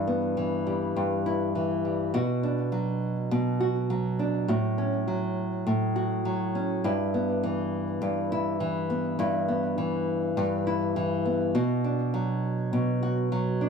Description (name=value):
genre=folktronica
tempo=102 BPM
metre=4/4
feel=swing 56% on 16ths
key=B minor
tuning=A4 = 439 Hz
part: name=nylon-string guitar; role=solo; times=0.0-13.7 s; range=G2 to F#4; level=-25 LUFS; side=equal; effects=none
room=wet small room ambience, RT60 0.5 s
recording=none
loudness=-25 LUFS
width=side -6 dB against mid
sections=0.0-2.1 A section; 2.1-13.7 B section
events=none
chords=0.0 Em/G; 2.1 Bm; 4.5 F#m/A; 6.8 Em/G; 11.5 Bm